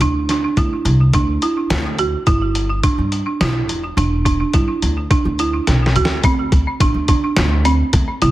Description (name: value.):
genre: progressive instrumental, band music in an uneven meter.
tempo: 106 BPM.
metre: 7/4.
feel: straight.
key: G major.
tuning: A4 = 441 Hz.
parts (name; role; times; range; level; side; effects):
folk marimba with hard mallets; arpeggios; 0.0-8.3 s; C4 to F#4; -19 LUFS; right 3 dB; digital delay.
upright bass; bass; 0.0-8.3 s; E1 to D3; -18 LUFS; equal; none.
lo-fi sampler-style drum kit; drums; 0.0-8.3 s; hi-hat, kick drum, snare drum; -18 LUFS; equal; none.
room: light reverb.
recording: heavily compressed radio sound, multiband compression.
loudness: -14 LUFS.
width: side -15 dB against mid.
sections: 0.0-6.2 A section; 6.2-8.3 B section.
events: drum fill 5.7-6.2.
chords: 0.0 N.C.; 2.3 G6; 6.2 D7(no3).